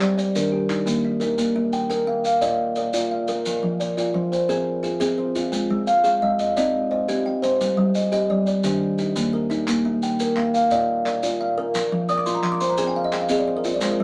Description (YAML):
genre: southern african traditional, mbira-style interlocking cycle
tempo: 116 BPM (dotted quarters)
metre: 12/8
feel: straight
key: Bb mixolydian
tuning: A4 = 439 Hz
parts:
  - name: kalimba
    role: arpeggios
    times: 0.0-14.0 s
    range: Eb3 to G5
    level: -24 LUFS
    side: equal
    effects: none
  - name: kalimba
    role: arpeggios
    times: 0.0-14.0 s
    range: Eb3 to Eb6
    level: -26 LUFS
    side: equal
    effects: none
  - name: group handclap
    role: percussion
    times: 0.0-0.9, 9.7-14.0 s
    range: none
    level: -35 LUFS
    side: equal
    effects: none
  - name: maracas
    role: percussion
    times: 0.2-14.0 s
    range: none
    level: -37 LUFS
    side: equal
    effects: none
room: wet studio ambience, RT60 0.5 s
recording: none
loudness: -22 LUFS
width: mono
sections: 0.0-1.4 A section; 1.4-14.0 B section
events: kalimba fill 11.9-13.8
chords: 0.4 Eb; 1.4 Bb; 3.5 Fm; 5.5 Ab; 6.6 Cm; 7.6 G5; 8.6 Eb; 9.7 Bb; 11.7 Fm